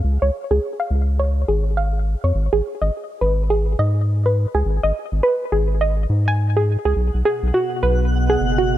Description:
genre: IDM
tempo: 104 BPM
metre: 4/4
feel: swing 62% on 16ths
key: unclear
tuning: A4 = 440 Hz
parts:
  - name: round analog bass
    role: bass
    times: 0.0-8.8 s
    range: Gb1 to Ab2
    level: -18 LUFS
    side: equal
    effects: none
  - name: soft round pluck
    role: arpeggios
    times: 0.2-8.6 s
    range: Gb4 to Ab5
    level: -21 LUFS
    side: right 1 dB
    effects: chorus, ping-pong delay
  - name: warbly tape-like pad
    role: sustained chords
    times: 7.3-8.8 s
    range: Cb3 to Eb5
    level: -25 LUFS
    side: right 1 dB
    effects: chorus, built-in reverb
  - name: twinkling granular texture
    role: texture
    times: 7.2-8.8 s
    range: Gb5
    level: -28 LUFS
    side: left 1 dB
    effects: built-in reverb
room: light reverb, digital ambience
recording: none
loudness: -17 LUFS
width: side -13 dB against mid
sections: 0.0-8.8 A section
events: none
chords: 0.0 Db; 2.3 Ab5; 7.0 Cb6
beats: | 0.04 0.62 1.19 1.77 | 2.35 2.92 3.50 4.08 | 4.66 5.23 5.81 6.39 | 6.96 7.54 8.12 8.69

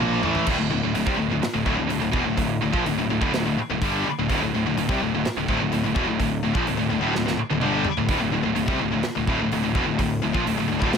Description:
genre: heavy metal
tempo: 126 BPM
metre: 4/4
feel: straight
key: D minor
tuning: A4 = 440 Hz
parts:
  - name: biting overdriven guitar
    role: riff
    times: 0.0-0.5 s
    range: A2 to Bb3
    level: -28 LUFS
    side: right 3 dB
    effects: none
  - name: heavy high-gain guitar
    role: riff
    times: 0.0-11.0 s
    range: D2 to Bb3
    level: -25 LUFS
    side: left 10 dB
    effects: distortion
  - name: scooped high-gain guitar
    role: riff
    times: 0.0-11.0 s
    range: D2 to Bb3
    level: -26 LUFS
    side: right 12 dB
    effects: distortion
  - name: fuzz picked electric bass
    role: bass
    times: 0.0-11.0 s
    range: D1 to C2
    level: -29 LUFS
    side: right 1 dB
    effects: overdrive
  - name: modern studio drum kit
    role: drums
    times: 0.0-11.0 s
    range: crash cymbal, hi-hat, kick drum, snare drum, toms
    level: -28 LUFS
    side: right 1 dB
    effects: none
room: little or no reverb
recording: none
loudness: -21 LUFS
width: side -6 dB against mid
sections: 0.5-11.0 A section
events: drum fill 0.0-0.5, 7.1-8.1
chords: 0.5 D5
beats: 0.00 | 0.48 0.96 1.44 1.91 | 2.39 2.87 3.34 3.82 | 4.30 4.77 5.25 5.72 | 6.20 6.67 7.15 7.62 | 8.10 8.57 9.04 9.52 | 9.99 10.46 10.94

